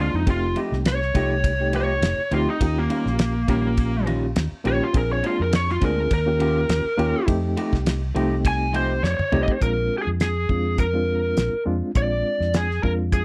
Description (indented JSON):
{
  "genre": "straight-eighth soul blues",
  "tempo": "103 BPM",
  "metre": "4/4",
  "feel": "swing 54% on 16ths",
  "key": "unclear",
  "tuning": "A4 = 440 Hz",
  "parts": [
    { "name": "lead guitar through a small cranked amp", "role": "melody", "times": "0.0-13.2 s", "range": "Bb3 to Ab5", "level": "-26 LUFS", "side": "equal", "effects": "overdrive" },
    { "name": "reed electric piano", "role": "accompaniment", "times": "0.0-13.2 s", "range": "C3 to Ab4", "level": "-30 LUFS", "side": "equal", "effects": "overdrive, fast tremolo" },
    { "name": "electric guitar through a small old amp", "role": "stabs", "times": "0.0-9.5 s", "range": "Bb2 to G4", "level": "-33 LUFS", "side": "equal", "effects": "tape echo" },
    { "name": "vintage muted fingered electric bass", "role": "bass", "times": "0.0-13.2 s", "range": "F1 to F2", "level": "-27 LUFS", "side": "equal", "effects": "none" },
    { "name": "cloth-damped thuddy drum kit", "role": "drums", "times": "0.3-13.2 s", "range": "hi-hat, kick drum, ride cymbal, snare drum, toms", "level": "-25 LUFS", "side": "equal", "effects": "none" }
  ],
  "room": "little or no reverb",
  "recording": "dry, close 1970s-style studio recording",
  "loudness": "-22 LUFS",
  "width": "mono",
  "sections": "0.0-9.6 A section; 9.6-13.2 B section",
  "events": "lead electric guitar solo 0.0-9.6; drum fill 9.0-9.6",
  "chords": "0.3 F9; 2.6 Eb9; 4.9 Bb9; 6.1 Eb9; 7.3 F9; 9.6 Bb9",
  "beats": "| 0.27 0.85 1.44 2.02 | 2.61 3.19 3.77 4.36 | 4.94 5.53 6.11 6.70 | 7.28 7.86 8.45 9.03 | 9.62 10.20 10.78 11.37 | 11.95 12.54 13.12"
}